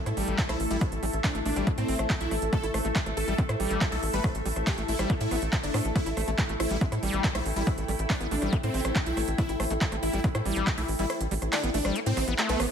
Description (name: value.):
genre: psychedelic trance.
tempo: 140 BPM.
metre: 4/4.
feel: straight.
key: unclear.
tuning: A4 = 440 Hz.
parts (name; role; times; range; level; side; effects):
bubbling stepped-filter texture; sustained chords; 0.0-12.7 s; A3 to A4; -35 LUFS; left 1 dB; chorus, built-in reverb, sidechain pumping.
granular cloud pad; texture; 0.0-12.7 s; E4 to G5; -37 LUFS; left 1 dB; built-in reverb, sidechain pumping.
screaming distorted acid line; riff; 0.1-12.7 s; G3 to E4; -35 LUFS; moving between left 4 dB and right 4 dB; distortion, chorus, auto-pan, sidechain pumping, ping-pong delay.
tight sequencer bass; bass; 0.1-12.7 s; G1 to A2; -31 LUFS; equal; none.
big-room dance drum kit; drums; 0.1-12.7 s; handclaps, hi-hat, rim click; -33 LUFS; right 1 dB; overdrive.
electronic kick drum; drums; 0.4-10.8 s; none; -28 LUFS; equal; overdrive.
dense compressed supersaw; melody; 0.5-12.6 s; B3 to B4; -34 LUFS; equal; phaser, sidechain pumping, tape echo.
room: light reverb, digital ambience.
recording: none.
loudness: -25 LUFS.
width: side -8 dB against mid.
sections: 0.0-12.7 A section.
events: kick drops out 11.1-12.7.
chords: 0.0 A5.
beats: 0.38 | 0.81 1.24 1.67 2.10 | 2.53 2.96 3.38 3.81 | 4.24 4.67 5.10 5.53 | 5.96 6.38 6.81 7.24 | 7.67 8.10 8.53 8.96 | 9.38 9.81 10.24 10.67 | 11.10 11.53 11.96 12.38.